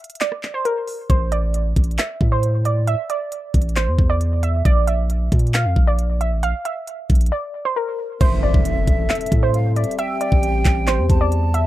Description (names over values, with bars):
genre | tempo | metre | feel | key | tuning
hip hop, trap | 135 BPM | 4/4 | half-time | A phrygian | A4 = 441 Hz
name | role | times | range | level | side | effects
warbly dusty pluck | melody | 0.0-11.7 s | Bb4 to F5 | -24 LUFS | right 2 dB | chorus, low-pass filter, tape echo
trap drum kit | drums | 0.0-11.6 s | crash cymbal, handclaps, hi-hat, kick drum, rim click | -18 LUFS | equal | none
long sustained 808-style bass | bass | 1.1-11.7 s | G1 to Bb2 | -19 LUFS | equal | none
breathy jazz flute | second line | 8.2-11.7 s | E5 to A5 | -27 LUFS | right 5 dB | tape echo
mellow French horn section | sustained chords | 8.2-11.7 s | G3 to A4 | -27 LUFS | left 6 dB | stereo widening
impact | sound effects | 8.2-10.0 s | none | -27 LUFS | equal | none
room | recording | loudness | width
little or no reverb | none | -17 LUFS | side -15 dB against mid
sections
0.0-8.2 A section; 8.2-11.7 B section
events
break 0.0-1.1, 7.3-8.2; impact 8.2-10.0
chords
0.0 Bb5; 1.1 A5; 4.7 Bb5; 8.2 Am7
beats
0.21 0.65 | 1.10 1.54 1.99 2.43 | 2.88 3.32 3.76 4.21 | 4.65 5.10 5.54 5.99 | 6.43 6.88 7.32 7.76 | 8.21 8.65 9.10 9.54 | 9.99 10.43 10.88 11.32